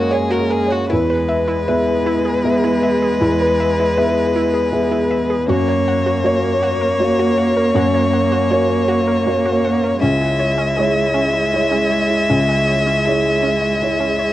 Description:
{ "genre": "neoclassical piano and strings", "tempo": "79 BPM", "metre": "3/4", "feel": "rubato", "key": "unclear", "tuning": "A4 = 439 Hz", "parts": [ { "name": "warm violin", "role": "melody", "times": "0.0-14.3 s", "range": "F#4 to E5", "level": "-19 LUFS", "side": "left 3 dB", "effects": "cassette tape" }, { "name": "warm cello", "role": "second line", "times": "0.0-14.3 s", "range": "G#3 to A#3", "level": "-23 LUFS", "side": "right 3 dB", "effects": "none" }, { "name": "felt-muted upright piano", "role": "accompaniment", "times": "0.0-14.3 s", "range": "C#2 to E5", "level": "-18 LUFS", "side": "right 1 dB", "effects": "none" }, { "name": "warm analog pad", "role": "sustained chords", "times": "0.0-14.3 s", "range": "G#3 to C#5", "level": "-29 LUFS", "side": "equal", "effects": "none" }, { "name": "analog pluck", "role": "arpeggios", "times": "0.0-14.3 s", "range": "C#4 to F#5", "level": "-25 LUFS", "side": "right 1 dB", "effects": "chorus" } ], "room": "light reverb, small room reverb", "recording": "home recording on cassette, nothing above 10.5 kHz", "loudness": "-14 LUFS", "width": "side -14 dB against mid", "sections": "0.9-14.3 A section", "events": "none", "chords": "0.0 F#add9; 0.9 E; 5.5 F#; 10.0 C#m" }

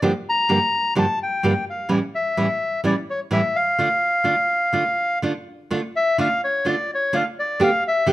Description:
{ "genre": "tango", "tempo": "127 BPM", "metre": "4/4", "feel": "rubato", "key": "D harmonic minor", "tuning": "A4 = 440 Hz", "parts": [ { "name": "nylon-string guitar", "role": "accompaniment", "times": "0.0-8.1 s", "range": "G2 to G4", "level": "-21 LUFS", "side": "right 2 dB", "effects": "none" }, { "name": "bandoneon", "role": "melody", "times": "0.3-8.1 s", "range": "C#5 to Bb5", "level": "-20 LUFS", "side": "left 1 dB", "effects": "none" } ], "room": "light reverb", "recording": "none", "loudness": "-18 LUFS", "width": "side -16 dB against mid", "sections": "0.0-5.7 A section; 5.7-8.1 B section", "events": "none", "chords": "0.0 Gm7; 1.9 A7; 3.8 Dm; 7.6 Gadd9/D" }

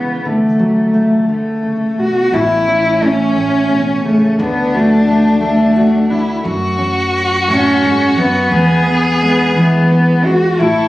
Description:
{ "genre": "acoustic folk-pop ballad", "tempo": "58 BPM (dotted quarters)", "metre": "6/8", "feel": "straight", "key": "A major", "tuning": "A4 = 442 Hz", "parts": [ { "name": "dark cello", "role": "melody", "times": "0.0-10.9 s", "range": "A3 to F#4", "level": "-13 LUFS", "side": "equal", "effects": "none" }, { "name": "fingerpicked steel-string acoustic guitar", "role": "accompaniment", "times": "0.0-10.9 s", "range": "E2 to F#4", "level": "-17 LUFS", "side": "equal", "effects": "none" }, { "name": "warm violin", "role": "second line", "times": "2.3-10.9 s", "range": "C#4 to A4", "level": "-18 LUFS", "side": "left 1 dB", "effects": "none" }, { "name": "upright bass", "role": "bass", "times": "2.3-10.9 s", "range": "A1 to F#2", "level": "-25 LUFS", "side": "equal", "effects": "none" }, { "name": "warm chamber string section", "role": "sustained chords", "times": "10.6-10.9 s", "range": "A4 to C#6", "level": "-22 LUFS", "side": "left 1 dB", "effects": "none" } ], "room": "light reverb", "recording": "recorded on a phone in the room, studio reverb, compression", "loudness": "-11 LUFS", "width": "side -16 dB against mid", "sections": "0.0-2.3 A section; 2.3-10.9 B section", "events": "none", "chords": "0.2 Dmaj7; 2.3 A; 4.4 D; 6.5 F#madd9; 8.5 E" }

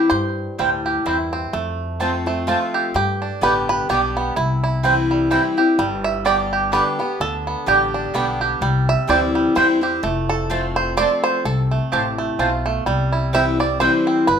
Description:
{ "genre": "bluegrass", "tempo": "127 BPM", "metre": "3/4", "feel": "swing 56% on 8ths", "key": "C major", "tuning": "A4 = 438 Hz", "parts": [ { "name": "bluegrass banjo", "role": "melody", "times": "0.0-14.4 s", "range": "G3 to E5", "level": "-21 LUFS", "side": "right 3 dB", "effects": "none" }, { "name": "picked steel-string acoustic guitar", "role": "accompaniment", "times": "0.0-14.4 s", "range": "F2 to G4", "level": "-22 LUFS", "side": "left 2 dB", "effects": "none" }, { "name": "upright bass", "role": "bass", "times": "0.1-14.4 s", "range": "F1 to G2", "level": "-24 LUFS", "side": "left 1 dB", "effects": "none" }, { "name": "mandolin", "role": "stabs", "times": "0.6-13.9 s", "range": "B3 to A5", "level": "-20 LUFS", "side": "right 3 dB", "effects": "none" } ], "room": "moderate large studio reverb, RT60 0.9 s", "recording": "minimal, uncompressed stereo recording", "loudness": "-17 LUFS", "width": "side -7 dB against mid", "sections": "0.0-10.0 A section; 10.0-14.4 A section", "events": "five-string banjo solo 0.0-14.4", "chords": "0.0 C; 1.5 F; 3.0 G; 4.4 C; 5.8 G; 8.6 C; 10.0 F; 12.9 C" }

